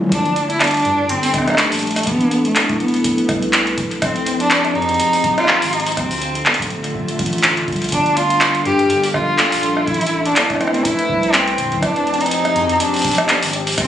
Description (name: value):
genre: IDM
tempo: 123 BPM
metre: 4/4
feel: swing 56% on 16ths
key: unclear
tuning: A4 = 440 Hz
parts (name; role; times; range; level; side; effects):
- warbly tape-like pad; sustained chords; 0.0-13.9 s; D3 to E5; -22 LUFS; left 1 dB; chorus, built-in reverb
- electro analog drum machine; drums; 0.0-13.9 s; handclaps, hi-hat, rim click, toms; -18 LUFS; equal; none
- warm cello; melody; 0.1-13.9 s; A3 to G4; -18 LUFS; equal; digital delay
- round analog bass; bass; 0.1-13.9 s; D1 to G2; -28 LUFS; equal; none
- electronic kick drum; drums; 0.1-13.9 s; none; -26 LUFS; equal; none
room: light reverb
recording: recorded on a phone in the room, studio reverb, compression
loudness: -14 LUFS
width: side -10 dB against mid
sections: 0.1-13.9 A section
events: none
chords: 0.1 Gm9; 2.1 Amadd9; 3.8 Fm9; 6.0 Dm9; 7.9 Gm9; 9.9 Amadd9; 11.6 Fm9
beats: | 0.12 0.61 1.09 1.58 | 2.07 2.56 3.04 3.53 | 4.02 4.51 5.00 5.48 | 5.97 6.46 6.95 7.43 | 7.92 8.41 8.90 9.39 | 9.87 10.36 10.85 11.34 | 11.82 12.31 12.80 13.29 | 13.78